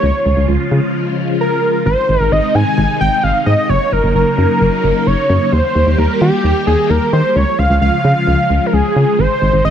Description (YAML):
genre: pop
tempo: 131 BPM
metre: 4/4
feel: straight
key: Ab major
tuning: A4 = 439 Hz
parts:
  - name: wide unison lead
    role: melody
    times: 0.0-9.7 s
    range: G4 to Ab5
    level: -15 LUFS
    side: equal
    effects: none
  - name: phased string machine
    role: sustained chords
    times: 0.0-9.7 s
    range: C3 to G4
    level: -18 LUFS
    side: left 1 dB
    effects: ensemble chorus, phaser
  - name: solid FM bass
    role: bass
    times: 0.0-9.7 s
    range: Gb1 to Eb3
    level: -14 LUFS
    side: equal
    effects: none
room: light reverb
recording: none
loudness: -11 LUFS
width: side -9 dB against mid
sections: 0.0-1.9 A section; 1.9-9.7 B section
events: break 0.9-1.9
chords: 0.0 Db; 1.9 Ab; 3.7 Gb6; 5.5 Eb; 7.4 Db; 9.2 Ab